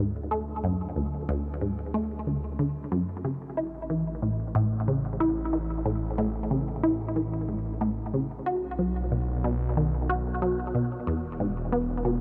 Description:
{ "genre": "ambient, sequencer-driven space music", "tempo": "92 BPM", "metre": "4/4", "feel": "straight", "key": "unclear", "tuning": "A4 = 439 Hz", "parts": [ { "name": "resonant blip pluck", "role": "riff", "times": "0.0-12.2 s", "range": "D2 to F#4", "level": "-30 LUFS", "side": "equal", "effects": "chorus, phaser, delay" }, { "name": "fat analog bass", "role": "bass", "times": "0.0-12.2 s", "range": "E1 to D2", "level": "-35 LUFS", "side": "equal", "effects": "none" } ], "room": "moderate huge ambient reverb, RT60 7.6 s", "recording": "none", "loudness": "-29 LUFS", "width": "mono", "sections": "0.0-12.2 A section", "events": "fade-in on analog synth bass 0.0-12.2", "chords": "0.0 D; 3.2 A5; 8.5 B5; 11.1 E5", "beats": "| 0.64 1.29 1.95 2.60 | 3.25 3.90 4.55 5.21 | 5.86 6.51 7.16 7.81 | 8.47 9.12 9.77 10.42 | 11.07 11.73" }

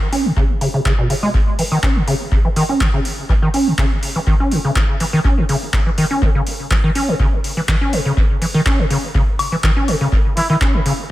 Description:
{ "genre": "acid house", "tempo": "123 BPM", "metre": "4/4", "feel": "straight", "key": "C# minor", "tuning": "A4 = 442 Hz", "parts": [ { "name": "acid bass, square", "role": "riff", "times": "0.1-10.9 s", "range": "B2 to C#4", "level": "-18 LUFS", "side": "equal", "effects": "overdrive, lush chorus, cassette tape, sidechain pumping, tape echo" }, { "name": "booming analog drum machine", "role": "drums", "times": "0.1-11.0 s", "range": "handclaps, hi-hat, woodblock", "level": "-24 LUFS", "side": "left 1 dB", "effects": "overdrive, tape echo" }, { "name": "electronic kick drum", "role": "drums", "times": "0.4-10.7 s", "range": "none", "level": "-17 LUFS", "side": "equal", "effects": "overdrive" }, { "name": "trumpet with plunger mute", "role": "melody", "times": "10.4-10.6 s", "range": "E4", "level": "-22 LUFS", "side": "right 1 dB", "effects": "dub echo" } ], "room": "light reverb", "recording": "echo-heavy mix", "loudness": "-14 LUFS", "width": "side -16 dB against mid", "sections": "0.0-11.1 A section", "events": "filter sweep on acid bass 0.0-11.1", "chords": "none", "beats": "0.37 0.86 | 1.34 1.83 2.32 2.81 | 3.29 3.78 4.27 4.76 | 5.25 5.73 6.22 6.71 | 7.20 7.69 8.17 8.66 | 9.15 9.64 10.12 10.61" }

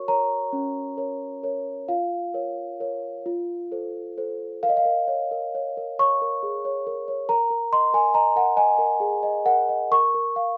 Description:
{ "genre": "classical, lullaby for celesta", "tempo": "44 BPM (dotted quarters)", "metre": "6/8", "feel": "rubato", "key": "Bb minor", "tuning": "A4 = 439 Hz", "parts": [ { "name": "celesta", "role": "solo", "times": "0.0-10.6 s", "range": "Db4 to Db6", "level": "-24 LUFS", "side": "equal", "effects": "none" } ], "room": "light reverb", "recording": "band playing live in one room", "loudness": "-24 LUFS", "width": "mono", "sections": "0.0-4.6 A section; 4.6-10.6 B section", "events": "none", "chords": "0.0 Gb; 1.9 Bbm/F; 3.3 F; 4.6 Bbm; 7.3 Eb5/Bb; 9.9 Bbm", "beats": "0.54 | 1.89 3.26 | 4.63 6.00 | 7.30 8.57 | 9.92" }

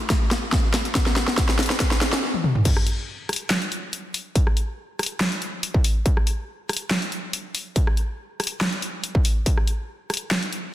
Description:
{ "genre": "dubstep", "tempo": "141 BPM", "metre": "4/4", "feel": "swing 53% on 16ths, half-time", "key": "none", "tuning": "none", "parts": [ { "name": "dubstep drum kit", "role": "drums", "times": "0.1-10.6 s", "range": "crash cymbal, handclaps, hi-hat, rim click, snare drum, toms", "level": "-23 LUFS", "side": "equal", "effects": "none" }, { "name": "electronic kick drum", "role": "drums", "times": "0.1-9.6 s", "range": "none", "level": "-21 LUFS", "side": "equal", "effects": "distortion" } ], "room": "moderate lush hall reverb, RT60 1.7 s", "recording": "dense, heavily limited modern master", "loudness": "-21 LUFS", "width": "side -13 dB against mid", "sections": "0.0-2.7 A section; 2.7-10.7 B section", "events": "build-up 0.0-2.7; drum fill 0.0-2.2, 2.3-2.7; drop 2.7-10.7", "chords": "none", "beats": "0.10 0.53 | 0.95 1.38 1.80 2.23 | 2.65 3.08 3.50 3.93 | 4.36 4.78 5.21 5.63 | 6.06 6.48 6.91 7.33 | 7.76 8.19 8.61 9.04 | 9.46 9.89 10.31" }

